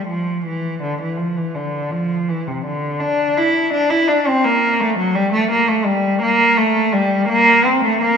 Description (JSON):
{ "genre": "classical, baroque-style suite movement for unaccompanied cello", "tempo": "83 BPM", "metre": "3/4", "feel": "rubato", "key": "D minor", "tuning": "A4 = 440 Hz", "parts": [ { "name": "warm cello", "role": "solo", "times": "0.0-8.2 s", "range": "C3 to E4", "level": "-15 LUFS", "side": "equal", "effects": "none" } ], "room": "wet concert hall reverb, RT60 2.4 s", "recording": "minimal, uncompressed stereo recording", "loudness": "-15 LUFS", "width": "side -6 dB against mid", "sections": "0.0-8.2 A section", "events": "none", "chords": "none" }